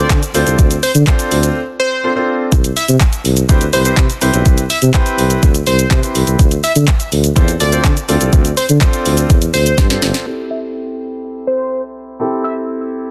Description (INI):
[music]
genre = dance-pop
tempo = 124 BPM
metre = 4/4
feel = straight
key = A minor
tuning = A4 = 437 Hz
[part]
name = plucky unison lead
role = melody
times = 0.0-12.5 s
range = C5 to E5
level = -21 LUFS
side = equal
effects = sidechain pumping, low-pass filter, delay
[part]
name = warm concert grand piano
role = accompaniment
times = 0.0-13.1 s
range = C4 to D5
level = -22 LUFS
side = equal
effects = sidechain pumping, low-pass filter
[part]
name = warm tuba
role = bass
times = 0.0-10.1 s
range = G1 to D3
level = -17 LUFS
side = equal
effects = sidechain pumping
[part]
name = smooth R&B drum kit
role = drums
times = 0.1-10.3 s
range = handclaps, hi-hat, kick drum, shaker, snare drum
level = -16 LUFS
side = equal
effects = none
[sound]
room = digital ambience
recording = dense, heavily limited modern master, faint mains hum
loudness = -14 LUFS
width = mono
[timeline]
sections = 0.0-10.3 A section; 10.3-13.1 B section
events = drop 0.0-10.3; break 1.6-2.5; drum fill 9.8-10.3; filter sweep 10.3-13.1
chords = 0.0 Dm7; 2.5 Cmaj7; 6.4 Dm7; 10.3 Am7